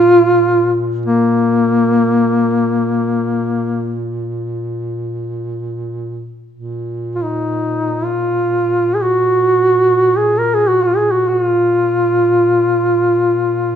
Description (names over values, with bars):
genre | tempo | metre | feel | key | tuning
caucasian folk, Caucasian lament | free time | none | none | unclear | A4 = 441 Hz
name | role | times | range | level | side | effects
mellow duduk | melody | 0.0-13.8 s | Bb3 to Bb4 | -12 LUFS | equal | none
dark duduk | drone | 0.0-13.8 s | Bb2 | -22 LUFS | equal | none
room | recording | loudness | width
moderate recital hall reverb, RT60 1.6 s | minimal, uncompressed stereo recording | -13 LUFS | side -8 dB against mid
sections
0.0-6.5 A section; 6.5-13.8 A section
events
none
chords
none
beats
free time